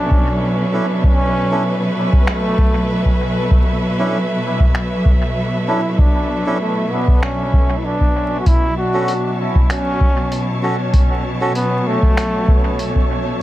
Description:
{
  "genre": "ambient dub",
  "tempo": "97 BPM",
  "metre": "4/4",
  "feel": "swing 53% on 16ths",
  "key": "B minor",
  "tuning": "A4 = 441 Hz",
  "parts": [
    { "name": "bright trombone", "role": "melody", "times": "0.0-13.1 s", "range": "A3 to F#4", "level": "-22 LUFS", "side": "equal", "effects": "dub echo" },
    { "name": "bright studio string section", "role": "sustained chords", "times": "0.0-13.4 s", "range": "B2 to A5", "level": "-20 LUFS", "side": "equal", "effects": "none" },
    { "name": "electronic kick drum", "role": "drums", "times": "0.1-13.1 s", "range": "none", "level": "-15 LUFS", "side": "equal", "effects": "small room ambience" },
    { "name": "melodica", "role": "stabs", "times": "0.7-11.5 s", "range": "C#4 to A4", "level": "-25 LUFS", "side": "right 1 dB", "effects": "dub echo" },
    { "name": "lo-fi sampler-style drum kit", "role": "drums", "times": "2.3-12.9 s", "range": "finger snaps, hi-hat", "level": "-29 LUFS", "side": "equal", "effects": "small room ambience, dub echo" },
    { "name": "wind-like tuned noise texture", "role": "texture", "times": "9.6-13.4 s", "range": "C#4 to C#5", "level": "-31 LUFS", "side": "right 3 dB", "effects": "built-in reverb" }
  ],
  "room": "little or no reverb",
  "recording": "echo-heavy mix, vinyl crackle",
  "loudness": "-14 LUFS",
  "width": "side -15 dB against mid",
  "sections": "0.0-13.4 A section",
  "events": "none",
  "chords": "0.0 Bm11; 8.5 F#m/B"
}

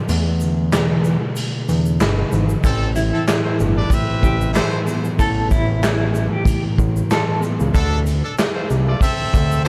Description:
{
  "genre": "hip hop, boom-bap hip-hop",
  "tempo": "94 BPM",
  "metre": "4/4",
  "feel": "swing 54% on 16ths",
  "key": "A minor",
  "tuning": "A4 = 439 Hz",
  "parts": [
    { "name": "mellow tine electric piano", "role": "accompaniment", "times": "0.0-7.8 s", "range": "A2 to C6", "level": "-25 LUFS", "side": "equal", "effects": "cassette tape" },
    { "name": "fat analog bass", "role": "bass", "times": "0.1-9.7 s", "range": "G1 to E2", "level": "-21 LUFS", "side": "equal", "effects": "none" },
    { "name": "raw garage drum kit", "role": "drums", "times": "0.1-9.5 s", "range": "handclaps, hi-hat, kick drum, shaker, snare drum", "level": "-23 LUFS", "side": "equal", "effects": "none" },
    { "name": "egg shaker", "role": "percussion", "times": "0.1-9.7 s", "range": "none", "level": "-43 LUFS", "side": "equal", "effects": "none" },
    { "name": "bright trumpet section", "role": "stabs", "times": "2.6-9.7 s", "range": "A3 to E5", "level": "-27 LUFS", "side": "equal", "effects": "delay" },
    { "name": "mellow electric guitar", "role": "melody", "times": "3.0-7.4 s", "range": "E4 to A4", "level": "-27 LUFS", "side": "equal", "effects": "tremolo" }
  ],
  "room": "light reverb",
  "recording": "vinyl crackle",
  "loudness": "-18 LUFS",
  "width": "mono",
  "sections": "0.0-9.7 A section",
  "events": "kick muted 0.1-2.6",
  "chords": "0.1 E7sus4; 2.6 Amadd9; 7.7 Dm7"
}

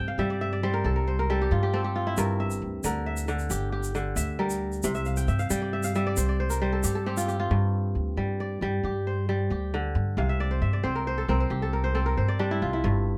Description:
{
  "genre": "west african traditional, West African string and xylophone music",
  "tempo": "90 BPM (dotted quarters)",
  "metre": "12/8",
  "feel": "straight",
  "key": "unclear",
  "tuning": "A4 = 440 Hz",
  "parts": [
    { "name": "kora", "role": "arpeggios", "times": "0.0-13.2 s", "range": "G2 to A5", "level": "-30 LUFS", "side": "equal", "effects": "none" },
    { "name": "upright bass", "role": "bass", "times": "0.0-13.2 s", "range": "G1 to G2", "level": "-30 LUFS", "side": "equal", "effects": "none" },
    { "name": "tube shaker", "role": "percussion", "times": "2.2-7.3 s", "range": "none", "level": "-38 LUFS", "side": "equal", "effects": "none" }
  ],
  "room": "light reverb",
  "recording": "none",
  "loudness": "-27 LUFS",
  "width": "mono",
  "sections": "0.0-7.5 A section; 7.5-13.2 B section",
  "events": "kora fill 0.0-2.2, 4.9-7.5, 10.2-12.8",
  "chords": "0.0 C5; 2.2 Gm; 4.8 C5; 7.5 G5; 10.2 C5"
}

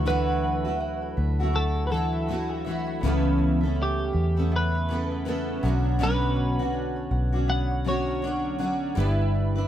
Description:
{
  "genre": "acoustic pop",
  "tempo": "81 BPM",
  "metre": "4/4",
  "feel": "swing 60% on 16ths",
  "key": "D major",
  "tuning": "A4 = 440 Hz",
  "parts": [
    { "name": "twelve-string electric guitar", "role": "melody", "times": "0.0-8.6 s", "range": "G4 to F#5", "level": "-31 LUFS", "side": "right 1 dB", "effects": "lush chorus" },
    { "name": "picked steel-string acoustic guitar", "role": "accompaniment", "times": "0.0-9.7 s", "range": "B2 to B4", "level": "-27 LUFS", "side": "equal", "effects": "double-tracked left and right" },
    { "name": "pipe organ, stopped flute", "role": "sustained chords", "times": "0.0-9.7 s", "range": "C#3 to C#5", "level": "-37 LUFS", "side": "left 3 dB", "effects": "none" },
    { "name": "mandolin", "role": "arpeggios", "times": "0.0-9.7 s", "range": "A3 to F#5", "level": "-38 LUFS", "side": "right 3 dB", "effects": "none" },
    { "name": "vintage muted fingered electric bass", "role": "bass", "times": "0.0-9.7 s", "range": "G1 to E2", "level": "-26 LUFS", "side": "equal", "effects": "none" }
  ],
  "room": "small room ambience",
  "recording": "rough home demo mix",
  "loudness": "-23 LUFS",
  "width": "side -11 dB against mid",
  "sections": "0.0-9.7 A section",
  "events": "none",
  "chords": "0.0 Dadd9; 3.0 Aadd9/C#; 5.6 Bmadd9; 9.0 G6"
}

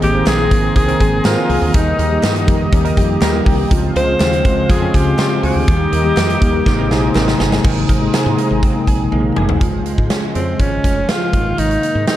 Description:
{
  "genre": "1980s-style pop",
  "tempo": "122 BPM",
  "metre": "4/4",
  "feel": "straight",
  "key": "Ab major",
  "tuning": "A4 = 445 Hz",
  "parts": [
    { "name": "bright alto saxophone", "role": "melody", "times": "0.0-7.4, 10.4-12.2 s", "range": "C4 to C5", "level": "-19 LUFS", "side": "left 1 dB", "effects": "none" },
    { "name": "mellow tine electric piano", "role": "accompaniment", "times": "0.0-12.2 s", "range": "C3 to Ab4", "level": "-19 LUFS", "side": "left 2 dB", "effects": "medium stereo tremolo" },
    { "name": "warm analog pad", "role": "sustained chords", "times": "0.0-9.6 s", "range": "Ab3 to Eb6", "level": "-25 LUFS", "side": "left 1 dB", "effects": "chorus" },
    { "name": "direct-recorded clean electric guitar", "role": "riff", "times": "0.0-12.2 s", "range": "Eb3 to Ab4", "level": "-24 LUFS", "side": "right 5 dB", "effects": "analog chorus, digital delay" },
    { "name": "woody fretless electric bass", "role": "bass", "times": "0.0-12.0 s", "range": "F1 to Db3", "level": "-20 LUFS", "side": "equal", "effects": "none" },
    { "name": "big rock drum kit", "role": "drums", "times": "0.0-12.2 s", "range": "crash cymbal, hi-hat, kick drum, snare drum, tambourine, toms", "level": "-17 LUFS", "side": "equal", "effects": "none" },
    { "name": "group handclap", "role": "percussion", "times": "0.3-7.3 s", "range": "none", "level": "-36 LUFS", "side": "left 4 dB", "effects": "none" },
    { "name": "funky polysynth comp", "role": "stabs", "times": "0.9-7.5 s", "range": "Eb3 to C5", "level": "-27 LUFS", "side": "equal", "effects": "chorus" }
  ],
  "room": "light reverb",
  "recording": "dark, warm production",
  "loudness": "-12 LUFS",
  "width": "side -13 dB against mid",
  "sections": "0.0-7.6 A section; 7.6-9.6 B section; 9.6-12.2 C section",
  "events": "drum fill 6.7-7.6, 9.1-9.6",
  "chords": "0.0 Abadd9; 1.7 Eb; 3.7 Dbmaj7; 5.7 Eb; 6.7 Abadd9; 9.6 Db/Ab; 11.3 Abadd9"
}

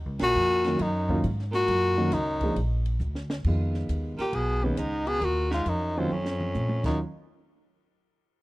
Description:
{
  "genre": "jazz, small-group swing and bop",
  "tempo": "136 BPM",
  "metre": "4/4",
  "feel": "swing 66% on 8ths",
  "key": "Eb minor",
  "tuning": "A4 = 436 Hz",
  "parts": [
    { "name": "upright bass", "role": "bass", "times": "0.0-7.0 s", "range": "Bb1 to Bb2", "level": "-29 LUFS", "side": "equal", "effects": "none" },
    { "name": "mellow tenor saxophone", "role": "melody", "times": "0.2-7.0 s", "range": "Cb4 to Ab4", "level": "-27 LUFS", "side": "left 2 dB", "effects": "none" },
    { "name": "clear baritone saxophone", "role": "second line", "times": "0.2-7.0 s", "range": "Eb2 to Cb3", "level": "-33 LUFS", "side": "right 3 dB", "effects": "none" },
    { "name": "compact cocktail drum kit", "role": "drums", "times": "0.2-6.9 s", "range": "crash cymbal, hi-hat, kick drum, ride cymbal, snare drum, toms", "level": "-34 LUFS", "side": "equal", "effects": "none" },
    { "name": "warm grand piano", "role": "accompaniment", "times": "0.7-7.0 s", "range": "Eb3 to Ab4", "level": "-30 LUFS", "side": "right 1 dB", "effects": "none" }
  ],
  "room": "small room ambience",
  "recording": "dry, close 1970s-style studio recording",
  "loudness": "-24 LUFS",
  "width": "side -19 dB against mid",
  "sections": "0.0-3.5 A section; 3.5-7.0 B section; 7.0-8.4 C section",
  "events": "band accent 0.1; drum fill 3.0-3.5, 6.1-7.0",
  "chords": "0.0 Ebm7; 2.6 Bb; 3.5 Fm7b5; 5.2 Ebm9; 7.0 N.C."
}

